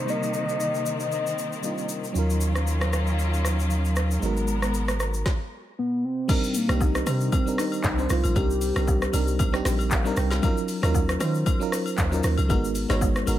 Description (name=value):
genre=amapiano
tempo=116 BPM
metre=4/4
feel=swing 55% on 16ths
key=C minor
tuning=A4 = 436 Hz
part: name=soft octave-layered synth lead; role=melody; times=0.0-1.9, 5.8-9.4 s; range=Bb3 to Eb5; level=-28 LUFS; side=left 1 dB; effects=chorus, ping-pong delay
part: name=FM electric piano with auto-pan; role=accompaniment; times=0.0-13.4 s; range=Gb3 to G5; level=-29 LUFS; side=right 1 dB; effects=none
part: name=warm studio string section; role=sustained chords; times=0.0-5.2 s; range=C3 to Bb4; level=-30 LUFS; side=left 1 dB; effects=sidechain pumping
part: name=deep house drum kit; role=drums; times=0.1-13.4 s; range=crash cymbal, handclaps, hi-hat, kick drum, rim click, shaker, snare drum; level=-27 LUFS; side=equal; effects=none
part: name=punchy sub bass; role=bass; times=2.2-5.2 s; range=Ab1 to Eb2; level=-24 LUFS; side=equal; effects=none
part: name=agogo bells and woodblock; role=percussion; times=6.3-13.4 s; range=none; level=-36 LUFS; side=left 7 dB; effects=none
part: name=deep log drum bass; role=bass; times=6.7-13.4 s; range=Ab1 to Eb3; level=-25 LUFS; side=equal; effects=none
room=digital ambience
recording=none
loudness=-22 LUFS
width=side -13 dB against mid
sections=0.0-6.3 A section; 6.3-13.4 B section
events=stop 5.3-6.3; drop 6.3-13.4; FM electric piano fill 9.7-10.4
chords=0.0 Cm9; 2.2 Ebm9; 4.2 Abm9; 6.3 Cm9; 10.4 Ebm9; 12.5 Abm9